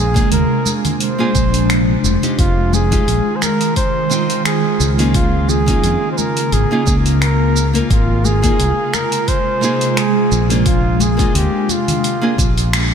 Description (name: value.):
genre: sunset chillout.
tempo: 87 BPM.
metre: 4/4.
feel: swing 55% on 16ths.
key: unclear.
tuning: A4 = 440 Hz.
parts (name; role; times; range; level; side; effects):
mellow flugelhorn; melody; 0.0-12.7 s; F4 to C5; -20 LUFS; right 1 dB; tape echo.
nylon-string guitar; accompaniment; 0.0-12.3 s; Ab3 to G5; -22 LUFS; moving between left 4 dB and right 3 dB; auto-pan, tape echo.
ethereal airy pad; sustained chords; 0.0-12.9 s; C3 to F4; -19 LUFS; right 1 dB; ensemble chorus, built-in reverb, phaser.
fretless electric bass; bass; 0.0-12.9 s; F1 to F2; -16 LUFS; equal; none.
deep house drum kit; drums; 0.2-12.9 s; finger snaps, hi-hat, shaker; -23 LUFS; right 1 dB; none.
electronic kick drum; drums; 0.2-12.5 s; none; -18 LUFS; equal; none.
congas; percussion; 0.7-12.0 s; none; -27 LUFS; left 5 dB; none.
room: moderate cathedral reverb, RT60 6.0 s.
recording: dreamy mix soaked in reverb.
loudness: -13 LUFS.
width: side -7 dB against mid.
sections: 0.0-12.9 A section.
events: kick drops out 12.7; band accent 12.7.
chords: 0.0 Bb9; 2.4 Fm7; 5.1 Db6; 7.9 Ab6; 10.7 Bb9.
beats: 0.32 1.00 1.69 | 2.38 3.07 3.76 4.45 | 5.14 5.83 6.52 7.21 | 7.90 8.59 9.28 9.97 | 10.66 11.35 12.04 12.73.